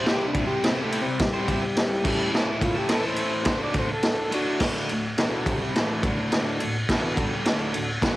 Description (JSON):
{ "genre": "garage rock duo or trio", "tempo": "106 BPM", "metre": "4/4", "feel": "straight", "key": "D mixolydian, D major from 4.6 s", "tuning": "A4 = 440 Hz", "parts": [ { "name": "overdriven combo organ", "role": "melody", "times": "0.0-4.6 s", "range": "G3 to D5", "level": "-28 LUFS", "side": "left 1 dB", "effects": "none" }, { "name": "combo organ", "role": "sustained chords", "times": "0.0-8.2 s", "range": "C4 to A4", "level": "-35 LUFS", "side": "equal", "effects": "none" }, { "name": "cranked stack guitar", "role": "riff", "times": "0.0-8.2 s", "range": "D2 to C5", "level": "-28 LUFS", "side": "equal", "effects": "overdrive, spring reverb, cassette tape" }, { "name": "raw garage drum kit", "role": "drums", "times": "0.1-8.2 s", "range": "crash cymbal, kick drum, ride cymbal, snare drum", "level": "-24 LUFS", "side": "equal", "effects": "cassette tape" } ], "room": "small room ambience", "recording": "home recording on cassette", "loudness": "-22 LUFS", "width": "side -16 dB against mid", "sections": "0.0-4.6 A section; 4.6-8.2 B section", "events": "transistor combo organ solo 0.0-4.6", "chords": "0.0 C; 2.0 A; 3.5 D" }